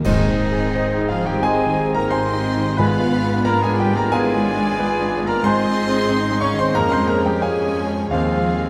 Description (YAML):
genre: classical, romantic movement for piano and orchestra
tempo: 89 BPM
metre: 4/4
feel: rubato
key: Ab major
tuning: A4 = 441 Hz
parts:
  - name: clear grand piano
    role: melody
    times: 0.0-8.7 s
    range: Eb2 to Db6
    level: -22 LUFS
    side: equal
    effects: none
  - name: rich chamber violin section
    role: second line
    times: 0.0-8.7 s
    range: Eb5 to Db6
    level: -37 LUFS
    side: equal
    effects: none
  - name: warm oboe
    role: second line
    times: 0.0-8.7 s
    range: Eb4 to Db5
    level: -32 LUFS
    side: equal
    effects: none
  - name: rich chamber viola section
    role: accompaniment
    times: 0.0-8.7 s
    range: Cb4 to Ab4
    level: -30 LUFS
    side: equal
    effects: none
  - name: warm chamber cello section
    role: bass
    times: 0.0-8.7 s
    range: Eb3 to Db4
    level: -28 LUFS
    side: equal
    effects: none
  - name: rich chamber violin section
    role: melody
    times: 0.1-8.7 s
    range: Ab4 to F5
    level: -36 LUFS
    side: equal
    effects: none
  - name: hollow concert flute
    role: second line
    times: 0.1-8.7 s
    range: Eb5 to Db6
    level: -32 LUFS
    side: equal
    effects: none
  - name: warm clarinet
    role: second line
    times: 0.1-8.7 s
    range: C4 to F4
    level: -32 LUFS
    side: equal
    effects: none
  - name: mellow bassoon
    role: accompaniment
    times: 0.1-8.7 s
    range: Ab3 to C4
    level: -32 LUFS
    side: equal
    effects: none
  - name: clear trombone section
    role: sustained chords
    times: 0.1-8.4 s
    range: D3 to Ab3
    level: -34 LUFS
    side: equal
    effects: none
  - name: mellow French horn section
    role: sustained chords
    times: 0.1-8.4 s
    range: none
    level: barely audible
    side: none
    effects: none
  - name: clear studio double bass section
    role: bass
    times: 0.1-8.7 s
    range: Ab1 to F2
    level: -30 LUFS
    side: equal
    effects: none
  - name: clash cymbals and concert bass drum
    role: percussion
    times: 0.1-1.4 s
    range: none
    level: -29 LUFS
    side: equal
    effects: none
  - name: timpani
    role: percussion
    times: 2.8-3.8 s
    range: Ab2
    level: -30 LUFS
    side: equal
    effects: none
room: moderate recital hall reverb, RT60 1.6 s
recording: close, detailed microphones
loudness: -19 LUFS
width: mono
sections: 0.0-8.7 A section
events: band accent 0.0-0.7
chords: 0.0 Ab; 2.8 Abdim7; 5.4 Ab; 6.7 Db/F; 8.1 Ab/Eb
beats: | 0.05 0.74 1.42 2.11 | 2.78 3.45 4.12 4.78 | 5.44 6.09 6.75 7.41 | 8.11